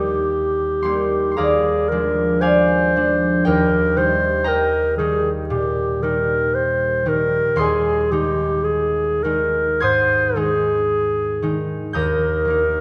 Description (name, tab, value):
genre	classical, romantic duo for clarinet and harp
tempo	57 BPM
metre	4/4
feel	rubato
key	Eb major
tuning	A4 = 442 Hz
part	mellow clarinet	melody	0.0-12.8 s	G4 to C5	-21 LUFS	equal	none
part	concert harp	accompaniment	0.0-12.8 s	Eb2 to Ab6	-23 LUFS	equal	none
room	moderate concert hall reverb, RT60 1.8 s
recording	none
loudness	-19 LUFS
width	mono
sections	0.0-12.8 A section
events	none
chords	0.0 Eb; 1.4 Bb7/Eb; 3.5 Eb; 7.6 Ab/Eb; 12.0 Eb